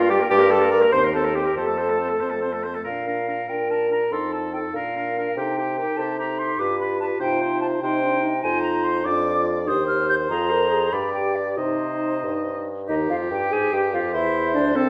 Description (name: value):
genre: quick classical-period movement for wind quintet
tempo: 96 BPM (dotted quarters)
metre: 6/8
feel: straight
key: Bb major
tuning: A4 = 441 Hz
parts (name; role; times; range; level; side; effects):
- hollow concert flute; melody; 0.0-14.9 s; C5 to G6; -29 LUFS; equal; none
- clear oboe; second line; 0.0-14.9 s; G4 to Eb5; -31 LUFS; equal; none
- mellow French horn; accompaniment; 0.0-14.9 s; G3 to Bb4; -30 LUFS; equal; none
- warm clarinet; accompaniment; 0.0-14.9 s; C4 to C5; -28 LUFS; equal; none
- mellow bassoon; bass; 0.0-14.9 s; C2 to C3; -29 LUFS; equal; none
room: wet recital hall reverb, RT60 1.4 s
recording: none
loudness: -22 LUFS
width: mono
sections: 0.0-2.9 A section; 2.9-12.9 B section; 12.9-14.9 C section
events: none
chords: 0.0 Gm; 0.9 Cm7/Eb; 1.6 F; 2.9 Bb; 4.1 F7; 4.7 Bb; 5.4 Cm; 6.6 G7; 7.2 Cm; 8.4 F5; 9.0 Dm/F; 9.7 Cm/Eb; 10.3 Fmadd11; 10.9 G5; 11.6 Cm; 12.9 Fm9/Eb; 14.1 D5